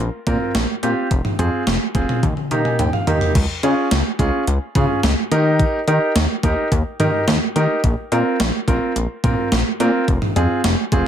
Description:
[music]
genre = synth-pop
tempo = 107 BPM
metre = 4/4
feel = straight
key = Eb mixolydian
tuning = A4 = 440 Hz
[part]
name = chorused synth bass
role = bass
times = 0.0-11.0 s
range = F1 to Eb3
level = -20 LUFS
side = left 1 dB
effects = none
[part]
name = warm concert grand piano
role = accompaniment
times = 0.3-11.1 s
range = Bb3 to Bb5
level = -20 LUFS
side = right 1 dB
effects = none
[part]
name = gated 80s digital drum machine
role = drums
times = 0.3-11.1 s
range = cowbell, crash cymbal, hi-hat, kick drum, snare drum, toms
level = -20 LUFS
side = equal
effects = gated reverb, gated reverb snare, overdrive, analog delay
[sound]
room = moderate spring reverb, RT60 1.3 s, digital ambience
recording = echo-heavy mix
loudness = -16 LUFS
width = side -9 dB against mid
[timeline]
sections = 0.0-3.4 A section; 3.4-11.1 B section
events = drum fill 2.2-3.4; grand piano fill 2.2-3.4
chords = 0.0 Bbsus2; 1.1 Fm; 2.2 Eb; 3.4 Db; 5.3 Eb; 7.8 Bbsus2; 10.1 Fm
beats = 0.55 | 1.11 1.67 2.23 2.79 | 3.35 3.91 4.47 5.04 | 5.60 6.16 6.72 7.28 | 7.84 8.40 8.96 9.52 | 10.08 10.64

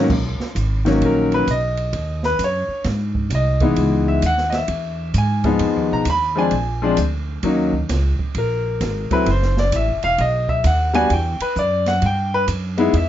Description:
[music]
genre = jazz piano trio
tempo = 131 BPM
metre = 4/4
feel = swing 66% on 8ths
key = B major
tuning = A4 = 440 Hz
[part]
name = clear concert grand piano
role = melody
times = 0.0-13.1 s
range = D#3 to Cb6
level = -19 LUFS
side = left 2 dB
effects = none
[part]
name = upright bass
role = bass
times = 0.0-13.1 s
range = E1 to G#2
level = -21 LUFS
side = right 1 dB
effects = none
[part]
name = open jazz drum kit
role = drums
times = 0.1-13.1 s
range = crash cymbal, hi-hat, kick drum, ride cymbal, snare drum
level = -28 LUFS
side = right 3 dB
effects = none
[sound]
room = light reverb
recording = nothing above 7.6 kHz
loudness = -17 LUFS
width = side -12 dB against mid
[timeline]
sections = 0.1-13.1 A section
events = grand piano solo 0.0-13.1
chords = 0.1 Bmaj7; 1.9 D#m7; 2.8 G#; 3.8 C#m9; 5.6 Fm7b5; 6.5 A#7; 7.4 D#m7; 9.3 D9 (rootless); 10.2 B; 11.1 Emadd9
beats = | 0.10 0.56 1.01 1.47 | 1.93 2.39 2.85 3.31 | 3.77 4.22 4.68 5.14 | 5.60 6.06 6.52 6.98 | 7.44 7.90 8.35 8.81 | 9.27 9.73 10.19 10.65 | 11.11 11.56 12.02 12.48 | 12.94

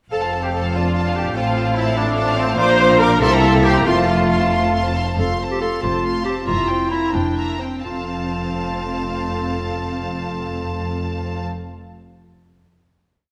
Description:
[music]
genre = quick classical-period movement for symphony orchestra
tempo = 81-99 BPM (dotted quarters)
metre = 6/8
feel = rubato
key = F major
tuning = A4 = 441 Hz
[part]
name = rich studio violin section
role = melody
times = 0.1-11.4 s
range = F5 to D6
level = -30 LUFS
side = equal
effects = none
[part]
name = clear clarinet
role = second line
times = 0.1-11.5 s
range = C4 to G5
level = -29 LUFS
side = equal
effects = none
[part]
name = hollow small flute group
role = second line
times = 0.1-5.0 s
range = C5 to C6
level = -27 LUFS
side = equal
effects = none
[part]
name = rich studio violin section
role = second line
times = 0.1-11.5 s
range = A4 to A5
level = -32 LUFS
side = equal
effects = none
[part]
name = warm oboe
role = second line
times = 0.1-5.0 s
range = C4 to C5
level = -29 LUFS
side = equal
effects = none
[part]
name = mellow bassoon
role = accompaniment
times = 0.1-5.0 s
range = A3 to D4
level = -28 LUFS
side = equal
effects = none
[part]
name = rich studio viola section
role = accompaniment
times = 0.1-11.4 s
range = A3 to C5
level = -26 LUFS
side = equal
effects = none
[part]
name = mellow French horn section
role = sustained chords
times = 0.1-11.5 s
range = A3 to A4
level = -28 LUFS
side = equal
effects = none
[part]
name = rich studio double bass section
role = bass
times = 0.1-11.5 s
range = F1 to C2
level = -28 LUFS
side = equal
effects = none
[part]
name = warm studio cello section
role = bass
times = 0.1-11.5 s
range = F2 to C3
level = -27 LUFS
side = equal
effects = none
[sound]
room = wet concert hall reverb, RT60 1.8 s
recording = none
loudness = -19 LUFS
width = mono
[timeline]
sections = 0.1-5.2 A section; 5.2-7.9 coda; 7.9-10.7 final chord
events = slowing down 4.5-7.9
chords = 0.1 F; 1.4 F/A; 2.6 Bb; 3.2 C7; 3.9 F; 6.5 C7/F; 7.9 F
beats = | 0.12 0.75 | 1.36 1.97 | 2.58 3.21 | 3.86 4.53 | 5.19 5.83 | 6.47 7.14 | 7.86 8.57 | 9.28 9.99

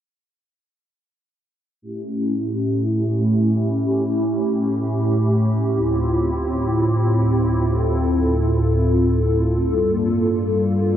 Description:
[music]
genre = hip hop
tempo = free time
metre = none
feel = none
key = unclear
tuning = A4 = 440 Hz
[part]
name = hollow soft pad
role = sustained chords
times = 1.8-11.0 s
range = D2 to A4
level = -17 LUFS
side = equal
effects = ensemble chorus, low-pass filter
[sound]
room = moderate huge ambient reverb, RT60 4.8 s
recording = dark, warm production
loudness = -17 LUFS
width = side -10 dB against mid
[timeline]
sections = 1.8-11.0 A section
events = filter sweep on analog synth pad 1.8-11.0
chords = 1.8 A7; 5.8 Dm11; 9.7 Gm7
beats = free time

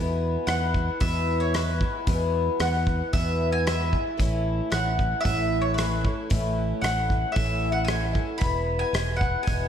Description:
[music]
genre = folk rock and heartland rock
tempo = 113 BPM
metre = 4/4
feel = straight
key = E major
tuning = A4 = 440 Hz
[part]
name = picked twelve-string acoustic guitar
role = accompaniment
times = 0.0-9.7 s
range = E2 to E4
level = -29 LUFS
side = left 2 dB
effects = none
[part]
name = fingered electric bass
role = bass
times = 0.0-9.7 s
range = E1 to E2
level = -27 LUFS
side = equal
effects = none
[part]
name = mandolin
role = melody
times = 0.5-9.7 s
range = B4 to B5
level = -29 LUFS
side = equal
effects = diffuse ambient delay
[part]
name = damped 70s drum kit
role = drums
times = 0.5-9.6 s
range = hi-hat, kick drum, rim click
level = -28 LUFS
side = equal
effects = none
[sound]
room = moderate lush hall reverb, RT60 1.7 s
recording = dreamy mix soaked in reverb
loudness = -22 LUFS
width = side -9 dB against mid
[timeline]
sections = 0.0-9.7 A section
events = none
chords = 0.0 E; 4.2 A; 8.4 E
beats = 0.47 1.00 1.53 | 2.06 2.59 3.12 3.65 | 4.18 4.71 5.25 5.78 | 6.30 6.83 7.36 7.89 | 8.42 8.95 9.48

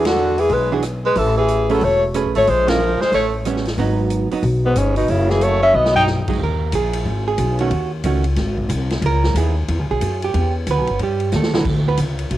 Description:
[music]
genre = jazz, small-group swing and bop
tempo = 183 BPM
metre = 4/4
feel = swing 64% on 8ths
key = unclear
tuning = A4 = 440 Hz
[part]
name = breathy alto saxophone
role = melody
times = 0.0-6.0 s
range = B3 to G5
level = -17 LUFS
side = left 2 dB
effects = cassette tape
[part]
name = bright tenor saxophone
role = second line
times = 0.0-6.1 s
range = G#2 to D#4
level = -22 LUFS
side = right 6 dB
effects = cassette tape
[part]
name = hollow-body jazz guitar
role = accompaniment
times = 0.0-12.0 s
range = D3 to B4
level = -22 LUFS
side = right 6 dB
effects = cassette tape
[part]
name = upright bass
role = bass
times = 0.0-12.4 s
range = E1 to G2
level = -20 LUFS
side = left 1 dB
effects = none
[part]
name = swinging big-band drum kit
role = drums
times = 0.1-12.4 s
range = crash cymbal, hi-hat, kick drum, ride cymbal, rim click, snare drum, toms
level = -27 LUFS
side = left 1 dB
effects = cassette tape
[sound]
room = moderate spring reverb, RT60 1.5 s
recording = home recording on cassette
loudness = -16 LUFS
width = side -14 dB against mid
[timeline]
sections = 0.0-6.4 A section; 6.4-12.4 B section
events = band accent 0.0, 2.6; drum fill 5.7-6.1, 11.3-11.7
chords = 0.0 E9; 1.2 Amaj9; 2.5 A#m7; 3.1 A9; 3.8 G#m7; 5.1 F#m9; 5.7 B; 6.4 B6; 7.7 D#m7b5; 8.4 G#; 9.0 C#m7; 10.3 Em7; 11.0 D#; 11.7 D5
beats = 0.17 0.50 0.83 | 1.16 1.49 1.81 2.14 | 2.47 2.80 3.12 3.45 | 3.78 4.11 4.43 4.76 | 5.09 5.42 5.75 6.07 | 6.40 6.73 7.06 7.39 | 7.71 8.04 8.37 8.70 | 9.03 9.35 9.68 10.01 | 10.34 10.67 10.99 11.32 | 11.65 11.98 12.31

